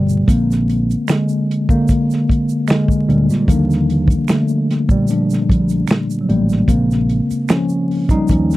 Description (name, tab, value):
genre	R&B, neo-soul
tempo	75 BPM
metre	4/4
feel	swing 55% on 16ths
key	unclear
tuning	A4 = 440 Hz
part	mellow tine electric piano	accompaniment	0.0-8.6 s	Bb2 to Eb4	-15 LUFS	equal	medium stereo tremolo
part	fingered electric bass	bass	0.0-8.6 s	G1 to Bb2	-17 LUFS	equal	none
part	egg shaker and finger snaps	percussion	0.1-8.6 s	none	-32 LUFS	right 13 dB	none
part	warm soul drum kit	drums	0.3-8.6 s	finger snaps, hi-hat, kick drum, snare drum	-16 LUFS	equal	none
room	light reverb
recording	dry, close 1970s-style studio recording, vinyl crackle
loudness	-13 LUFS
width	side -17 dB against mid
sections	0.0-8.6 A section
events	tine electric piano solo 0.0-8.6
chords	0.3 Bb7; 3.5 Ebmaj9; 6.7 Bbm7